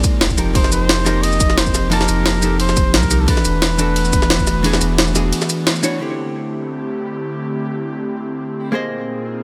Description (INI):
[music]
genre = liquid drum and bass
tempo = 176 BPM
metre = 4/4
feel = swing 54% on 16ths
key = unclear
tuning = A4 = 440 Hz
[part]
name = vintage hollow-body jazz guitar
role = accompaniment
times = 0.0-9.4 s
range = D3 to A5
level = -24 LUFS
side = equal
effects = delay
[part]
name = airy breathy pad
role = sustained chords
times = 0.0-9.4 s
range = Bb2 to Ab4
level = -28 LUFS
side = equal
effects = chorus
[part]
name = warm sub bass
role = bass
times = 0.0-5.3 s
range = E1 to C2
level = -22 LUFS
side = equal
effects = none
[part]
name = electronic kick drum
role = drums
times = 0.0-4.5 s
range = none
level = -21 LUFS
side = equal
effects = none
[part]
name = jungle sampler-style drum kit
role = drums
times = 0.0-5.9 s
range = hi-hat, ride cymbal, shaker, snare drum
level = -21 LUFS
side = equal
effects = none
[part]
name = clear flugelhorn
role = melody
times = 0.6-5.7 s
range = A4 to Eb5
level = -25 LUFS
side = equal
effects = delay
[sound]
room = light reverb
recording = none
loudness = -17 LUFS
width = mono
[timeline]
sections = 0.0-6.0 A section; 6.0-9.4 B section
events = drop 0.0-6.0; break 5.3-6.0; band accent 5.7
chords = 0.4 F9sus4; 3.3 E9sus4; 6.0 D9sus4; 8.7 Bb9sus4